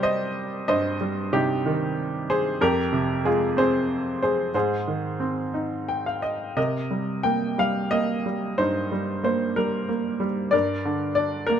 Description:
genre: classical, lyrical solo piano.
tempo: 62 BPM (dotted quarters).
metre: 6/8.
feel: rubato.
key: unclear.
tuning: A4 = 440 Hz.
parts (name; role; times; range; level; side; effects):
bright baby grand piano; solo; 0.0-11.6 s; F2 to G5; -22 LUFS; equal; none.
room: light reverb.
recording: close, detailed microphones.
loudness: -22 LUFS.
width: side -8 dB against mid.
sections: 0.0-6.6 A section; 6.6-11.6 B section.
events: grand piano fill 5.5-6.6.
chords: 0.0 Cm; 2.6 Fmadd9; 4.5 Ab; 6.6 Cm7; 10.5 Gm.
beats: | 0.69 1.65 | 2.61 3.57 | 4.54 5.54 | 6.57 7.58 | 8.59 9.57 | 10.53 11.49.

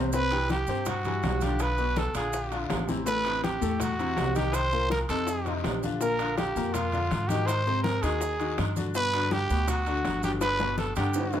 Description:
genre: latin, salsa.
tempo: 163 BPM.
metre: 4/4.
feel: straight.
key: unclear.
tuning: A4 = 440 Hz.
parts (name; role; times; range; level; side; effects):
clear concert grand piano; accompaniment; 0.0-11.4 s; A2 to F#5; -32 LUFS; left 4 dB; none.
upright bass; bass; 0.0-11.4 s; G1 to Ab2; -31 LUFS; right 1 dB; none.
growling trumpet; melody; 0.1-11.4 s; F4 to C5; -29 LUFS; right 1 dB; plate reverb.
bongos; percussion; 0.1-11.4 s; none; -36 LUFS; left 5 dB; none.
congas; percussion; 0.1-11.4 s; none; -36 LUFS; left 1 dB; none.
guiro; percussion; 0.1-11.4 s; none; -46 LUFS; left 6 dB; none.
maracas; percussion; 0.1-11.4 s; none; -44 LUFS; right 6 dB; none.
timbales; percussion; 0.3-11.4 s; none; -36 LUFS; right 4 dB; none.
room: moderate studio ambience, RT60 0.5 s.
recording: none.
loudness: -25 LUFS.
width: side -10 dB against mid.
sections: 0.1-11.4 A section.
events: drum fill 10.4-11.4.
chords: 0.1 Cmaj9#11; 1.6 Bdim; 2.3 Bb7#11; 3.1 Am9; 4.5 Cm7; 5.3 F7; 6.0 Bb; 7.5 Ab7; 8.9 Gmaj7.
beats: | 0.13 0.50 0.86 1.23 | 1.60 1.97 2.33 2.70 | 3.07 3.44 3.81 4.17 | 4.54 4.91 5.28 5.64 | 6.01 6.38 6.75 7.11 | 7.48 7.85 8.21 8.58 | 8.95 9.32 9.68 10.05 | 10.42 10.78 11.15.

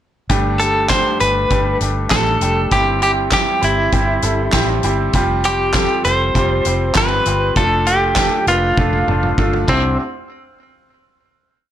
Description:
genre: piano-driven pop.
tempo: 99 BPM.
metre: 4/4.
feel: straight.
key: C major.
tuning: A4 = 443 Hz.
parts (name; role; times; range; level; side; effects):
bright upright piano; accompaniment; 0.3-10.0 s; C2 to B4; -20 LUFS; equal; plate reverb.
vintage muted fingered electric bass; bass; 0.3-10.0 s; F1 to C2; -21 LUFS; equal; none.
loose indie drum kit; drums; 0.3-9.8 s; crash cymbal, handclaps, hi-hat, kick drum, snare drum, toms; -20 LUFS; equal; none.
direct-recorded clean electric guitar; melody; 0.6-10.0 s; C4 to C5; -17 LUFS; equal; tremolo, plate reverb.
room: moderate large studio reverb, RT60 0.8 s, small room ambience.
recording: blown-out, overdriven recording, overdrive.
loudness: -14 LUFS.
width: side -11 dB against mid.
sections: 0.3-10.0 verse; 10.0-11.7 final hit.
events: drum fill 8.8-10.0.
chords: 0.3 Gsus2; 2.7 C/G; 5.1 Fsus2; 7.6 Dm/F; 9.7 Cadd9; 10.0 N.C..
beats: | 0.30 0.90 1.51 2.11 | 2.72 3.32 3.93 4.53 | 5.14 5.74 6.35 6.95 | 7.56 8.16 8.77 9.38 | 9.98.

